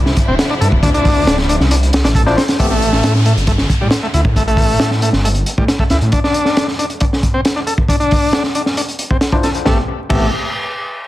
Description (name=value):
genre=breakbeat, breaks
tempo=136 BPM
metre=4/4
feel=straight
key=A minor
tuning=A4 = 440 Hz
part: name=clear studio string section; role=sustained chords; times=0.0-2.6 s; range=C3 to E4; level=-24 LUFS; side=left 1 dB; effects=vintage 12-bit sampler grit, sidechain pumping
part: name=detuned saw bass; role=bass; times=0.0-6.1, 9.7-10.3 s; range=D1 to A2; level=-16 LUFS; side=equal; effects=none
part: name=crunchy breakbeat drum kit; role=drums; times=0.1-10.2 s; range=crash cymbal, hi-hat, kick drum, snare drum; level=-15 LUFS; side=equal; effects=none
part: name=overdriven combo organ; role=riff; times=0.3-10.3 s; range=G3 to A4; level=-19 LUFS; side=left 1 dB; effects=low-pass filter, ping-pong delay
part: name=overdriven tine electric piano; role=stabs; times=2.3-2.7, 9.3-10.3 s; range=A3 to C5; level=-20 LUFS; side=left 3 dB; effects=low-pass filter, ping-pong delay
part: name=downlifter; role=sound effects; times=2.6-6.1 s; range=none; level=-28 LUFS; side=equal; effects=none
room=light reverb, small room reverb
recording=dense, heavily limited modern master, vinyl crackle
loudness=-12 LUFS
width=side -15 dB against mid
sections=0.0-2.6 A section; 2.6-9.7 B section; 9.7-11.1 C section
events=drop 0.0-2.6; filter sweep on tine electric piano 2.6-9.7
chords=0.0 Dm9; 2.6 A7(no3); 6.1 N.C.; 9.7 Am9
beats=0.39 | 0.83 1.27 1.71 2.15 | 2.60 3.04 3.48 3.92 | 4.36 4.80 5.24 5.68 | 6.12 6.57 7.01 7.45 | 7.89 8.33 8.77 9.21 | 9.65 10.10